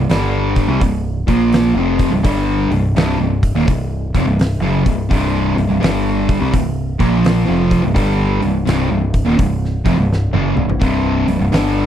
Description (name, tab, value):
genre	stoner and doom metal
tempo	84 BPM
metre	4/4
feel	swing 65% on 8ths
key	unclear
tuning	A4 = 440 Hz
part	fuzz guitar	riff	0.0-11.9 s	C2 to Bb3	-16 LUFS	equal	distortion
part	growling picked electric bass	bass	0.0-11.9 s	C1 to C2	-20 LUFS	equal	overdrive
part	oversized low-tuned drum kit	drums	0.1-11.8 s	hi-hat, kick drum, snare drum, toms	-19 LUFS	equal	none
room	little or no reverb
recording	dry, close 1970s-style studio recording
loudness	-13 LUFS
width	side -10 dB against mid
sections	0.0-11.9 A section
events	drum fill 10.1-10.8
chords	0.0 C5